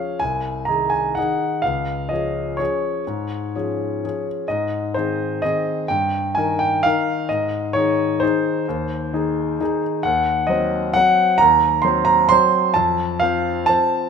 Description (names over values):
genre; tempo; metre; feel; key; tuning
classical, piano waltz; 120-140 BPM; 3/4; rubato; unclear; A4 = 440 Hz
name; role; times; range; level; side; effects
clear grand piano; solo; 0.0-14.1 s; C2 to C6; -17 LUFS; equal; none
room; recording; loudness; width
moderate recital hall reverb, RT60 1.7 s; none; -17 LUFS; side -6 dB against mid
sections
0.0-14.1 A section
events
none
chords
0.2 Ab/C; 1.7 Db; 4.5 Ab; 5.9 Eb/G; 7.3 Ab; 10.1 Cdim/Eb; 12.8 F